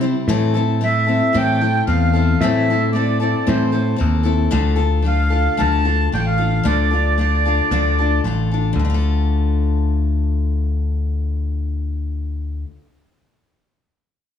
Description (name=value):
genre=folk rock and heartland rock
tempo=113 BPM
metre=4/4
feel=straight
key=D minor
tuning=A4 = 440 Hz
part: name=picked steel-string acoustic guitar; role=accompaniment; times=0.0-12.9 s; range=A2 to C5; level=-22 LUFS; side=left 6 dB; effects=none
part: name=picked electric bass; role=bass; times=0.0-12.6 s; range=A1 to C3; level=-18 LUFS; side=left 1 dB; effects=none
part: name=accordion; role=melody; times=0.8-8.2 s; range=C5 to A5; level=-21 LUFS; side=right 3 dB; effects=light tremolo tuning
room=little or no reverb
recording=small room ambience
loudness=-16 LUFS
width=side -8 dB against mid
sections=0.3-8.8 A section; 8.8-13.1 B section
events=none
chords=0.3 Am; 4.5 Dm